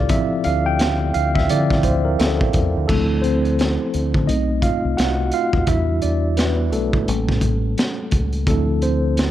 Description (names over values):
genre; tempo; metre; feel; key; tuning
R&B, neo-soul; 86 BPM; 4/4; swing 60% on 16ths; D minor; A4 = 437 Hz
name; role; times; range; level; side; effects
mellow tine electric piano; accompaniment; 0.0-9.3 s; F3 to G5; -20 LUFS; equal; medium stereo tremolo
deep dub fingered electric bass; bass; 0.0-9.3 s; A1 to D3; -21 LUFS; equal; none
crunchy breakbeat drum kit; drums; 0.1-9.3 s; crash cymbal, hi-hat, kick drum, snare drum; -22 LUFS; equal; none
room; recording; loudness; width
small room reverb; none; -17 LUFS; side -12 dB against mid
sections
0.0-2.9 A section; 2.9-9.3 B section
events
tine electric piano solo 0.0-2.9, 2.9-9.3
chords
0.0 Dm9; 4.3 B7b9; 5.7 Em7; 7.1 A7b9; 8.5 Dm9